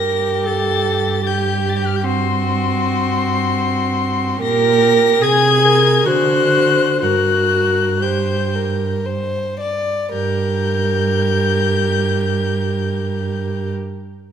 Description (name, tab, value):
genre	classical, slow romantic movement for string quartet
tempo	54-79 BPM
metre	3/4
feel	rubato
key	G minor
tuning	A4 = 440 Hz
part	dark violin	melody	0.0-13.7 s	C6 to Bb6	-21 LUFS	left 9 dB	none
part	warm violin	second line	0.0-13.7 s	F#4 to D5	-22 LUFS	left 2 dB	none
part	dark viola	accompaniment	0.0-13.7 s	C4 to Bb4	-19 LUFS	right 1 dB	none
part	dark cello	bass	0.0-13.7 s	G2 to D3	-20 LUFS	right 4 dB	none
room	wet recital hall reverb, RT60 1.7 s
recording	none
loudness	-15 LUFS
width	side -8 dB against mid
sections	0.0-10.1 A section; 10.1-13.2 B section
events	slowing down 3.2-10.1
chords	0.0 Gm; 2.1 Gsus4; 4.4 Gm/Bb; 5.2 Ab/C; 6.1 D7; 7.0 Gm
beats	0.47 1.26 | 2.05 2.82 3.60 | 4.43 5.22 6.07 | 7.03 8.02 9.05 | 10.12 11.12 12.16